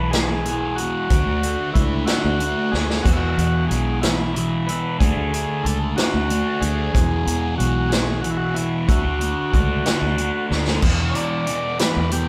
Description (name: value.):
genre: psychedelic rock.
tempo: 62 BPM (dotted quarters).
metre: 6/8.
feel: straight.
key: E mixolydian.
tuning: A4 = 439 Hz.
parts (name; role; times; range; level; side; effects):
combo organ; melody; 0.0-12.3 s; E4 to D5; -28 LUFS; equal; spring reverb.
thick fuzz guitar; riff; 0.0-12.3 s; E2 to D4; -26 LUFS; equal; distortion, phaser.
fingered electric bass; bass; 0.0-12.2 s; B1 to E2; -26 LUFS; equal; none.
vintage drum kit; drums; 0.1-12.3 s; crash cymbal, hi-hat, kick drum, snare drum; -24 LUFS; equal; none.
room: light reverb.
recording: band playing live in one room.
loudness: -21 LUFS.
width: mono.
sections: 0.0-10.8 A section; 10.8-12.3 B section.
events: drum fill 2.7-3.1, 10.5-10.8; transistor combo organ solo 10.8-12.3.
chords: 0.0 E; 1.1 D; 3.1 E5; 5.0 D; 7.0 E; 8.9 D; 10.8 E5.